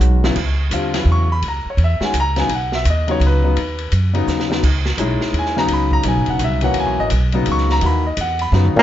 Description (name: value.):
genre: modal jazz.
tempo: 169 BPM.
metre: 3/4.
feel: swing 63% on 8ths.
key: C# dorian.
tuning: A4 = 440 Hz.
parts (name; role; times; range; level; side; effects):
warm concert grand piano; accompaniment; 0.0-8.8 s; B2 to C#6; -19 LUFS; left 2 dB; none.
upright bass; bass; 0.0-8.8 s; E1 to F#2; -17 LUFS; equal; none.
open jazz drum kit; drums; 0.0-8.8 s; crash cymbal, hi-hat, kick drum, ride cymbal, snare drum, toms; -25 LUFS; equal; none.
growling tenor saxophone; melody; 8.8 s; A#3; -7 LUFS; right 1 dB; none.
growling trombone; second line; 8.8 s; A#2; -12 LUFS; left 2 dB; none.
room: light reverb.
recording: nothing above 7.6 kHz.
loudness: -15 LUFS.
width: side -12 dB against mid.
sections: 0.4-8.8 A section.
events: drum fill 0.0-0.4, 4.3-4.6, 8.5.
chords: 0.4 C#m11; 2.5 Badd9; 4.6 C#m11; 6.8 G#m7.